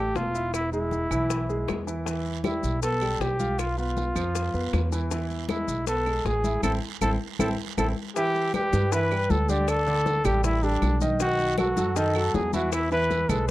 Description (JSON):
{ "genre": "latin, Cuban son and guajira", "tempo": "158 BPM", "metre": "4/4", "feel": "straight", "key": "unclear", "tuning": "A4 = 440 Hz", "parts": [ { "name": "breathy trumpet", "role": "melody", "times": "0.0-13.5 s", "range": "D4 to B4", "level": "-26 LUFS", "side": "equal", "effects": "none" }, { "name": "clear grand piano", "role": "arpeggios", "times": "0.0-13.5 s", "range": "D3 to F5", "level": "-30 LUFS", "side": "right 1 dB", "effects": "none" }, { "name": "upright bass", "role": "bass", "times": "0.0-13.5 s", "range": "E1 to G2", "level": "-28 LUFS", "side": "equal", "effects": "none" }, { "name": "congas", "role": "percussion", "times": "0.1-13.5 s", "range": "none", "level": "-33 LUFS", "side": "left 2 dB", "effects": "none" }, { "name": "bongos", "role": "percussion", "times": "0.2-13.5 s", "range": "none", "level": "-37 LUFS", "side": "left 8 dB", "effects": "none" }, { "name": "maracas", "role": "percussion", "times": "0.2-13.5 s", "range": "none", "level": "-40 LUFS", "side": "left 15 dB", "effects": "none" }, { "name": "claves", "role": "percussion", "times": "0.5-13.5 s", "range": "none", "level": "-39 LUFS", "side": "right 16 dB", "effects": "none" }, { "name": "guiro", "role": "percussion", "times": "2.1-13.5 s", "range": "none", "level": "-42 LUFS", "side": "right 13 dB", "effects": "none" } ], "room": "small room ambience", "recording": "dry, close 1970s-style studio recording", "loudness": "-23 LUFS", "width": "side -16 dB against mid", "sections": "0.0-8.2 A section; 8.2-13.5 B section", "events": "band accent 6.6-8.2; drum fill 7.2-8.2", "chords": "0.0 Dm (rootless); 0.5 E; 2.1 Em; 3.6 E5; 5.1 E; 6.6 Am; 8.2 G6; 9.7 Dsus4; 11.2 B7; 12.7 E" }